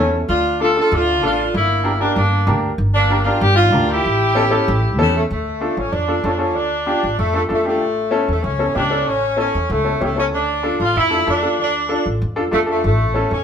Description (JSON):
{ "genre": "latin, cumbia", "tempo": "191 BPM", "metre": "4/4", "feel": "straight", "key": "D harmonic minor", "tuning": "A4 = 440 Hz", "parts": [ { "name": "warm saxophone section", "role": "melody", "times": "0.0-13.4 s", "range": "A3 to A4", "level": "-18 LUFS", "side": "equal", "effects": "none" }, { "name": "bright upright piano", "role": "accompaniment", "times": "0.0-13.3 s", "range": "C#4 to Bb4", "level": "-21 LUFS", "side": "left 1 dB", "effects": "none" }, { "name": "upright bass", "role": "bass", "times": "0.0-13.4 s", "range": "G1 to F2", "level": "-21 LUFS", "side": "equal", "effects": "none" } ], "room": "wet studio reverb, RT60 0.8 s", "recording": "band playing live in one room", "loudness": "-15 LUFS", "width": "side -8 dB against mid", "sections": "0.0-5.3 A section; 5.3-13.4 B section", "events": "none", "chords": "0.3 Dm; 1.5 Gm; 4.0 A7; 5.3 Dm; 7.8 A; 10.3 Dm; 12.8 A" }